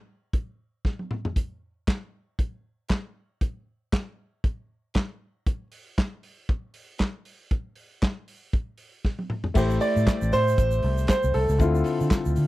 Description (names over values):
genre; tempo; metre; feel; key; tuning
disco; 117 BPM; 4/4; swing 56% on 16ths; unclear; A4 = 439 Hz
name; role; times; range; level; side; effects
warm soul drum kit; drums; 0.3-12.5 s; crash cymbal, handclaps, hi-hat, kick drum, snare drum, toms; -24 LUFS; equal; none
clear grand piano; accompaniment; 9.5-12.5 s; D3 to C5; -27 LUFS; left 4 dB; none
vintage muted fingered electric bass; bass; 9.6-12.5 s; A1 to D3; -24 LUFS; equal; none
tube shaker; percussion; 9.6-12.5 s; none; -48 LUFS; right 14 dB; none
warm grand piano; melody; 9.8-12.3 s; A4 to D5; -25 LUFS; right 2 dB; none
room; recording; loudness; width
little or no reverb; none; -24 LUFS; side -17 dB against mid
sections
0.0-9.6 A section; 9.6-12.5 B section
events
drum fill 0.8-1.4, 9.0-9.6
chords
0.0 N.C.; 9.6 Am7; 11.6 Dm9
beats
0.33 0.85 | 1.36 1.87 2.39 2.90 | 3.41 3.92 4.44 4.95 | 5.46 5.97 6.49 7.00 | 7.51 8.02 8.54 9.05 | 9.56 10.07 10.58 11.09 | 11.60 12.11